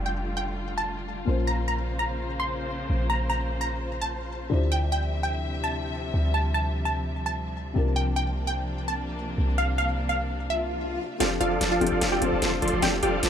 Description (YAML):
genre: future bass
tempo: 148 BPM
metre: 4/4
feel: swing 53% on 16ths, half-time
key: F major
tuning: A4 = 441 Hz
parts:
  - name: felt-muted upright piano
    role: accompaniment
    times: 0.0-13.3 s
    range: Bb2 to C5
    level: -33 LUFS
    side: left 6 dB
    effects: ping-pong delay
  - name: warm studio string section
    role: sustained chords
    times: 0.0-13.3 s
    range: C3 to E5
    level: -34 LUFS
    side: left 1 dB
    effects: low-pass filter
  - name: warm 808-style bass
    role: bass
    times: 0.0-13.3 s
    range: F1 to D2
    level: -28 LUFS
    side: equal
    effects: none
  - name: wide unison pluck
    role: melody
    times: 0.1-13.3 s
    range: F4 to C6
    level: -30 LUFS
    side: equal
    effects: ping-pong delay
  - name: swell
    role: sound effects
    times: 10.5-11.2 s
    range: none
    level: -35 LUFS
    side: left 2 dB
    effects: none
  - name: supersaw chords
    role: riff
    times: 11.2-13.3 s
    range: F3 to C6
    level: -25 LUFS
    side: right 1 dB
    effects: low-pass filter
  - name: dubstep drum kit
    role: drums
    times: 11.2-13.3 s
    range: hi-hat, snare drum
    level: -29 LUFS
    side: equal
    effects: high-pass filter on hats, low-pass filter on hats, high-pass filter on snare, low-pass filter on snare, high-pass filter on toms, low-pass filter on toms
room: light reverb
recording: none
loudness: -24 LUFS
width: side -8 dB against mid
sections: 0.0-11.2 A section; 11.2-13.3 B section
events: filter sweep on drum 0.0-11.2; swell 10.5-11.2; build-up 11.2-13.3; drum fill 11.2-13.3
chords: 0.0 F69; 1.3 Bbmadd9; 4.5 Dm11; 7.8 C9sus4; 11.2 F69